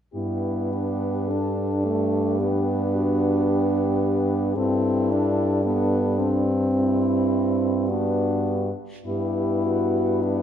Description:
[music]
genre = classical, lyrical piece for horn quartet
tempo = 50-57 BPM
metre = 4/4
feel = rubato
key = G major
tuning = A4 = 440 Hz
[part]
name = warm French horn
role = melody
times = 0.1-10.4 s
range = D4 to A4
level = -29 LUFS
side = left 7 dB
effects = none
[part]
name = warm French horn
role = second line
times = 0.1-10.4 s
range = B3 to G4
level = -26 LUFS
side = right 4 dB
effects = none
[part]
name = warm French horn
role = accompaniment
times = 0.1-10.4 s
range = A3 to D4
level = -26 LUFS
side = left 3 dB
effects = none
[part]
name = warm French horn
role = bass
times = 0.2-10.4 s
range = G2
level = -26 LUFS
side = right 1 dB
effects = none
[sound]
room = moderate scoring stage reverb, RT60 1.7 s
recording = minimal, uncompressed stereo recording, faint mains hum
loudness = -20 LUFS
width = side -9 dB against mid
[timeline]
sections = 0.1-9.1 A section; 9.1-10.4 B section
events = none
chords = 0.1 G; 4.6 D7(no3)/G; 9.1 G

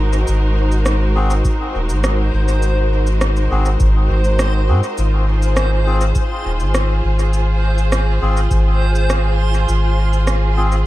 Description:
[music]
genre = ambient dub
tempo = 102 BPM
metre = 4/4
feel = straight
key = unclear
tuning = A4 = 440 Hz
[part]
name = rich studio string section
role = sustained chords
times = 0.0-10.9 s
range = Ab3 to C5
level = -23 LUFS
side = equal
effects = none
[part]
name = soft dub sub bass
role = bass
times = 0.0-10.8 s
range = Eb1 to Ab2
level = -15 LUFS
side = equal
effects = none
[part]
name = backwards swelling texture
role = texture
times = 0.0-10.9 s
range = C5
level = -28 LUFS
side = right 1 dB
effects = built-in reverb
[part]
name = electronic cabasa and rim click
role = drums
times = 0.1-10.8 s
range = none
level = -25 LUFS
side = equal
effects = overdrive, dub echo
[part]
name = melodica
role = stabs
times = 1.2-10.8 s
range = C4 to Ab4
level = -27 LUFS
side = left 2 dB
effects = dub echo
[part]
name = electronic kick drum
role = drums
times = 1.4-8.6 s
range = none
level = -18 LUFS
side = equal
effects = none
[sound]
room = digital ambience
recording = echo-heavy mix, vinyl crackle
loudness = -14 LUFS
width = side -16 dB against mid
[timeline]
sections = 0.0-10.9 A section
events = none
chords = 0.0 Ab7; 5.0 Fm

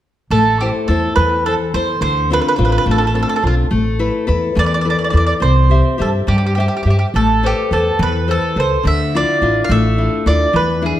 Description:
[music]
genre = italian folk, Italian serenade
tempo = 70 BPM (dotted quarters)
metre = 6/8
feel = straight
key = A minor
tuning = A4 = 440 Hz
[part]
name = mandolin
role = melody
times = 0.3-11.0 s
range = F4 to F5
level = -18 LUFS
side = right 3 dB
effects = none
[part]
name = nylon-string guitar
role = accompaniment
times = 0.3-11.0 s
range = D3 to E5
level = -18 LUFS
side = left 4 dB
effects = none
[part]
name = upright bass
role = bass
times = 0.3-10.9 s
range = A1 to G2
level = -17 LUFS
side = equal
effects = none
[sound]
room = moderate recital hall reverb, RT60 1.5 s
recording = none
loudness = -13 LUFS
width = side -12 dB against mid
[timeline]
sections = 0.3-11.0 A section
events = none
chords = 0.3 Am; 2.0 Dm7; 3.7 Asus2; 5.4 C; 7.1 Amadd9; 8.8 Dmadd9

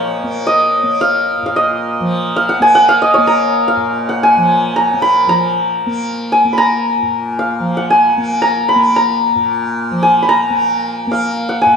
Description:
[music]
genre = indian classical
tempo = 113 BPM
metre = 7/4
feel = straight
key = Bb raga bhairavi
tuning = A4 = 439 Hz
[part]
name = santur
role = melody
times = 0.0-11.8 s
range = Db5 to Cb6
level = -12 LUFS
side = equal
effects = none
[part]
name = tanpura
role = drone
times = 0.0-11.8 s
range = Bb2 to Bb3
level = -20 LUFS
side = equal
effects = none
[sound]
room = wet recital hall reverb, RT60 1.6 s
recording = recorded in a church or concert hall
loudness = -11 LUFS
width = side -6 dB against mid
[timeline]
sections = 0.0-5.3 A section; 5.3-11.8 B section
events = speeding up 0.0-11.8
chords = none

